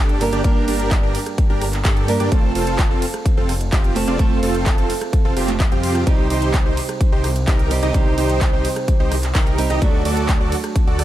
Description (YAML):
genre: EDM, festival progressive house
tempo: 128 BPM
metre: 4/4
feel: straight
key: G minor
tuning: A4 = 440 Hz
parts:
  - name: fingerpicked acoustic archtop guitar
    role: accompaniment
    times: 0.0-11.0 s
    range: G2 to Bb4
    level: -24 LUFS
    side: right 4 dB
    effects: sidechain pumping, digital delay
  - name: dense compressed supersaw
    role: riff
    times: 0.0-11.0 s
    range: C4 to Eb5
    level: -23 LUFS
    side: right 1 dB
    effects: sidechain pumping, digital delay
  - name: wide detuned saw bass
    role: bass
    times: 0.0-11.0 s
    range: F1 to G2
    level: -23 LUFS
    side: equal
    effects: chorus, sidechain pumping
  - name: big-room dance drum kit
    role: drums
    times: 0.1-11.0 s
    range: handclaps, hi-hat, ride cymbal, rim click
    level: -27 LUFS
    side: right 1 dB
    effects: none
  - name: electronic kick drum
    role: drums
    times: 0.4-10.8 s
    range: none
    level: -17 LUFS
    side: equal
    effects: none
room: digital ambience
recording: dark, warm production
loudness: -16 LUFS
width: side -13 dB against mid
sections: 0.0-11.0 A section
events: none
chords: 0.0 Gm; 2.3 F; 6.1 Cm; 9.8 D